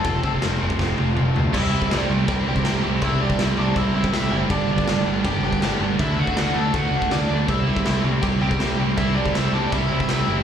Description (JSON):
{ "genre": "punk rock", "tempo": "161 BPM", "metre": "4/4", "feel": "straight", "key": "unclear", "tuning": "A4 = 440 Hz", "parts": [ { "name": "smooth overdriven lead guitar", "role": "melody", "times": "0.0-10.4 s", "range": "D4 to A5", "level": "-27 LUFS", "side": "equal", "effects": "none" }, { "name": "overdriven electric guitar", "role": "riff", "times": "0.0-10.4 s", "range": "G2 to F4", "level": "-28 LUFS", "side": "left 12 dB", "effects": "slapback echo" }, { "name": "overdriven semi-hollow guitar", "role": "riff", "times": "0.0-10.4 s", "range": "F2 to D4", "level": "-26 LUFS", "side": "right 9 dB", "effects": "slapback echo" }, { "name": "growling picked electric bass", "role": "bass", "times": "0.0-10.4 s", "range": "F1 to D2", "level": "-25 LUFS", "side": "left 1 dB", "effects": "overdrive" }, { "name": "raw garage drum kit", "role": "drums", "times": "0.0-10.2 s", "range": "crash cymbal, kick drum, snare drum, toms", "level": "-24 LUFS", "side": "equal", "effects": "none" }, { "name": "heavy high-gain guitar", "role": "riff", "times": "1.5-10.4 s", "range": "G2 to E4", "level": "-31 LUFS", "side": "right 1 dB", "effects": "distortion, slapback echo" } ], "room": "studio reverb", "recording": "live gig heard through the venue's PA, club reverb", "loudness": "-18 LUFS", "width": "side -8 dB against mid", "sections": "0.0-1.5 A section; 1.5-10.4 B section", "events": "drum fill 0.8-1.5", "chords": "0.0 F; 1.5 C; 4.5 G; 6.0 D; 7.5 C", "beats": "| 0.05 0.42 0.79 1.17 | 1.54 1.91 2.28 2.65 | 3.02 3.40 3.77 4.14 | 4.51 4.88 5.25 5.62 | 6.00 6.37 6.74 7.11 | 7.48 7.86 8.23 8.60 | 8.97 9.35 9.72 10.09" }